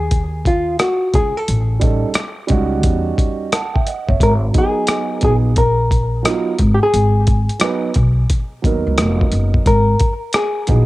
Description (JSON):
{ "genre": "hip hop, jazz-hop", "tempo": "88 BPM", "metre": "4/4", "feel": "swing 65% on 16ths", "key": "G# dorian", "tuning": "A4 = 440 Hz", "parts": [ { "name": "hollow-body jazz guitar", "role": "melody", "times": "0.0-10.9 s", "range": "E#4 to A#4", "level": "-19 LUFS", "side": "left 1 dB", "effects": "cassette tape, tape echo" }, { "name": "upright bass", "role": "bass", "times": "0.0-10.9 s", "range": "E#1 to E2", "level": "-17 LUFS", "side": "equal", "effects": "none" }, { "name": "boom bap sampler-style drum kit", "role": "drums", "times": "0.1-10.9 s", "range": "hi-hat, kick drum, rim click", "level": "-17 LUFS", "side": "equal", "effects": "cassette tape" }, { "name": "dark baby grand piano", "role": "accompaniment", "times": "1.8-10.9 s", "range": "F#3 to A5", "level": "-21 LUFS", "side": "right 5 dB", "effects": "cassette tape" } ], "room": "studio reverb", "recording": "home recording on cassette", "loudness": "-14 LUFS", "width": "side -18 dB against mid", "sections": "0.0-9.7 A section; 9.7-10.9 A section", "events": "none", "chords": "0.0 C#add9 (rootless); 1.5 A7#11; 4.2 G#m7" }